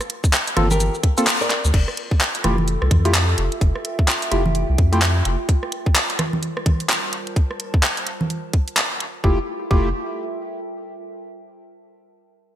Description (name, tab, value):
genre	UK garage, two-step garage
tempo	128 BPM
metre	4/4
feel	swing 60% on 16ths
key	F major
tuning	A4 = 441 Hz
part	garage drum kit	drums	0.0-9.1 s	congas, crash cymbal, handclaps, hi-hat, rim click, shaker	-21 LUFS	equal	overdrive, gated reverb
part	electronic kick drum	drums	0.2-9.8 s	none	-17 LUFS	equal	overdrive
part	percussive organ stab	stabs	0.6-5.0, 9.2-9.9 s	A3 to A4	-24 LUFS	equal	analog chorus, cassette tape, ping-pong delay
part	soft dub sub bass	bass	0.6-5.4, 9.2-9.9 s	F1 to F2	-20 LUFS	equal	none
part	flamenco guitar	melody	0.7-1.6 s	G4 to D5	-27 LUFS	left 1 dB	ping-pong delay
part	warbly tape-like pad	texture	2.4-11.1 s	G3 to A5	-32 LUFS	right 2 dB	chorus, built-in reverb, sidechain pumping
room	light reverb, digital ambience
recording	bright 1980s-style digital production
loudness	-17 LUFS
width	side -11 dB against mid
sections	0.0-1.7 A section; 1.7-9.2 B section; 9.2-11.1 C section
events	drop 0.0-1.7; kick drops out 1.3-1.7; band accent 1.3; fade-out on ambient pad 1.7-9.2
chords	0.0 Gm11; 1.7 Fmaj9; 5.5 Gm11; 9.2 Fmaj9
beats	0.33 0.80 1.27 | 1.74 2.21 2.68 3.15 | 3.61 4.08 4.55 5.02 | 5.49 5.96 6.43 6.89 | 7.36 7.83 8.30 8.77 | 9.24 9.71 10.18 10.64